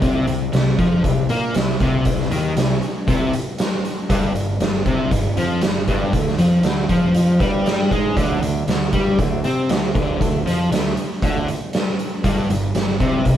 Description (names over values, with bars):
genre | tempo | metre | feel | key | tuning
blues rock power trio and southern rock | 118 BPM | 4/4 | straight | unclear | A4 = 440 Hz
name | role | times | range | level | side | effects
fuzz guitar | riff | 0.0-13.4 s | G2 to C4 | -19 LUFS | equal | distortion
fuzz fingered electric bass | bass | 0.0-13.4 s | G1 to C3 | -26 LUFS | equal | overdrive
oversized low-tuned drum kit | drums | 0.0-13.4 s | hi-hat, kick drum, snare drum | -21 LUFS | equal | none
room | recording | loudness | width
moderate studio reverb, RT60 1.0 s | band playing live in one room | -17 LUFS | side -11 dB against mid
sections
0.0-13.4 A section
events
none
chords
0.0 Cm; 4.1 G7sus4; 6.1 Dmadd11; 12.2 Gsus4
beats
| 0.03 0.54 1.04 1.55 | 2.06 2.57 3.08 3.59 | 4.10 4.61 5.12 5.62 | 6.13 6.64 7.15 7.66 | 8.17 8.68 9.19 9.70 | 10.21 10.71 11.22 11.73 | 12.25 12.76 13.27